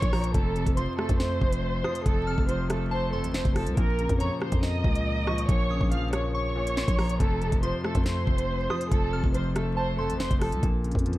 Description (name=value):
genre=hip hop, drill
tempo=140 BPM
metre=4/4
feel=half-time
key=Bb harmonic minor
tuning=A4 = 440 Hz
part: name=warm studio violin section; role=melody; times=0.0-10.6 s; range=A4 to F6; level=-31 LUFS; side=right 1 dB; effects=low-pass filter, slapback echo
part: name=soft synth bell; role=second line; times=0.0-10.2 s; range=A5 to F6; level=-38 LUFS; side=equal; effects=chorus, phaser, slapback echo
part: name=warm concert grand piano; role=accompaniment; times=0.0-11.2 s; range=F2 to Bb3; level=-31 LUFS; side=left 1 dB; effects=low-pass filter
part: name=growling 808-style bass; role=bass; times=0.0-11.2 s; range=F1 to F2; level=-29 LUFS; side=equal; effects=none
part: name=drill drum kit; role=drums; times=0.0-11.2 s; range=hi-hat, kick drum, rim click, snare drum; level=-26 LUFS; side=equal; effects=none
room=digital ambience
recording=dark, warm production, vinyl crackle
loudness=-24 LUFS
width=side -16 dB against mid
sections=0.0-10.6 A section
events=none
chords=0.3 F; 3.8 Bbm; 7.2 F; 10.6 Bbm